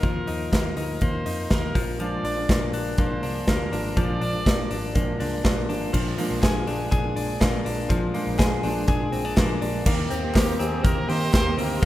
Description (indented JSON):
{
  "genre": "jangly indie pop",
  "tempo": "122 BPM",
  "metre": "4/4",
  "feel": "straight",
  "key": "unclear",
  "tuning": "A4 = 445 Hz",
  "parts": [
    { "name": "clear trumpet", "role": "melody", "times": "0.0-4.9, 10.3-11.9 s", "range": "G4 to D5", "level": "-32 LUFS", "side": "right 2 dB", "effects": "none" },
    { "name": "direct-recorded clean electric guitar", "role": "arpeggios", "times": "0.0-11.9 s", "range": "F3 to Ab4", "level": "-28 LUFS", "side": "left 3 dB", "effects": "analog delay" },
    { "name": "vintage muted picked electric bass", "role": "bass", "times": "0.0-11.9 s", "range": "Ab1 to Eb3", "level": "-31 LUFS", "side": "equal", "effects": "none" },
    { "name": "big rock drum kit", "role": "drums", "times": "0.0-11.9 s", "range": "crash cymbal, hi-hat, kick drum, snare drum", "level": "-24 LUFS", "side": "equal", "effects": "none" },
    { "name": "fingerpicked steel-string acoustic guitar", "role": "accompaniment", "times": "2.0-11.9 s", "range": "Bb2 to Ab4", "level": "-31 LUFS", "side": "right 3 dB", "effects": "none" },
    { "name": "group handclap", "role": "percussion", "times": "6.4-11.4 s", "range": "none", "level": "barely audible", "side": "none", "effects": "none" },
    { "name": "lush unison pad", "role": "sustained chords", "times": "9.9-11.9 s", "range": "G4 to Bb5", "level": "-35 LUFS", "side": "equal", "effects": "chorus, phaser" }
  ],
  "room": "light reverb, studio reverb",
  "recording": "rough home demo mix",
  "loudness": "-21 LUFS",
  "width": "side -14 dB against mid",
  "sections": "0.0-5.9 A section; 5.9-9.9 B section; 9.9-11.9 C section",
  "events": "none",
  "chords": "0.0 Ebsus2; 1.8 Bb7; 9.9 Eb6"
}